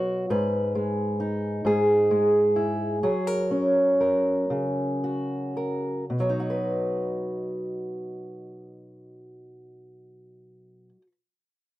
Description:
folk; 36-45 BPM (dotted quarters); 6/8; straight; B major; A4 = 441 Hz
fingerpicked old ladder-braced acoustic guitar; accompaniment; 0.0-11.1 s; G#2 to B4; -23 LUFS; equal
light reverb; dry, close 1970s-style studio recording; -23 LUFS; side -16 dB against mid
0.0-6.1 A section; 6.1-9.4 B section
slowing down 0.3-6.1
0.3 G#m; 1.6 Emaj7/G#; 3.0 F#; 6.1 B

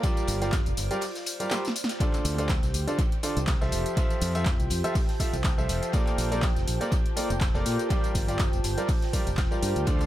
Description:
piano house; 122 BPM; 4/4; swing 55% on 16ths; A4 = 438 Hz
analog string pad; sustained chords; 0.0-10.1 s; F4 to C6; -38 LUFS; right 1 dB; ensemble chorus, sidechain pumping
clear baby grand piano; riff; 0.0-10.1 s; D3 to E5; -31 LUFS; right 1 dB; sidechain pumping, tape echo
electronic kick drum; drums; 0.0-10.0 s; -26 LUFS; equal
punchy analog drum machine; drums; 0.0-10.1 s; handclaps, hi-hat, snare drum, tambourine; -34 LUFS; equal; tape echo
raw garage drum kit; drums; 0.0-10.0 s; hi-hat, ride cymbal, snare drum; -43 LUFS; left 1 dB; high-pass filter on cymbals, high-pass filter on hats, high-pass filter on snare, high-pass filter on room, tape echo
warbly tape-like pad; texture; 0.0-10.1 s; F4 to A5; -37 LUFS; right 1 dB; chorus, built-in reverb, sidechain pumping
modern bright fingered electric bass; bass; 0.3-10.1 s; F1 to Bb2; -29 LUFS; equal; sidechain pumping
small room ambience; echo-heavy mix; -24 LUFS; side -13 dB against mid
0.0-10.1 A section
break 1.0-2.0; drum fill 1.5-2.0
0.0 Gm7; 2.0 Dm7; 3.7 Fmaj7; 5.9 Bbmaj7

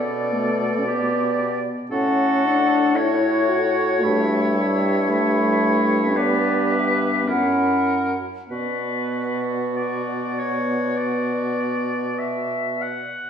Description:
classical, slow romantic movement for wind quintet; 47-58 BPM; 4/4; rubato; B minor; A4 = 440 Hz
mellow concert flute; melody; 0.0-13.0 s; C#5 to F#5; -26 LUFS; left 4 dB
clear oboe; second line; 0.0-13.3 s; A4 to F#5; -26 LUFS; left 2 dB
bright clarinet; accompaniment; 0.0-13.0 s; E4 to A4; -28 LUFS; right 6 dB
warm French horn; accompaniment; 0.0-12.8 s; G3 to F#4; -24 LUFS; equal
mellow bassoon; bass; 0.0-13.0 s; F#2 to B2; -25 LUFS; right 1 dB
wet recital hall reverb, RT60 1.5 s; heard from further back in the room; -19 LUFS; side -8 dB against mid
0.0-13.3 A section
0.0 G/B; 1.9 F#m/A; 4.0 Em/G; 6.2 G; 7.3 F#7; 8.5 Bm

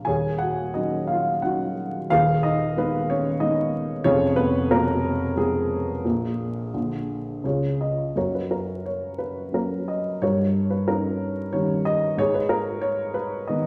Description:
classical, lyrical solo piano; 82-95 BPM; 3/4; rubato; Eb minor, F# major from 8.2 s; A4 = 439 Hz
dark baby grand piano; solo; 0.0-13.7 s; Eb1 to Ab5; -24 LUFS; equal
wet recital hall reverb, RT60 1.3 s; vinyl crackle; -24 LUFS; mono
0.0-8.2 A section; 8.2-13.7 B section
0.1 Ebm7; 2.1 Abm/Eb; 4.0 Fdim; 6.0 Absus2/Bb; 6.7 Bb; 7.4 Db; 8.2 F#; 10.2 D#7/G; 12.2 G#m

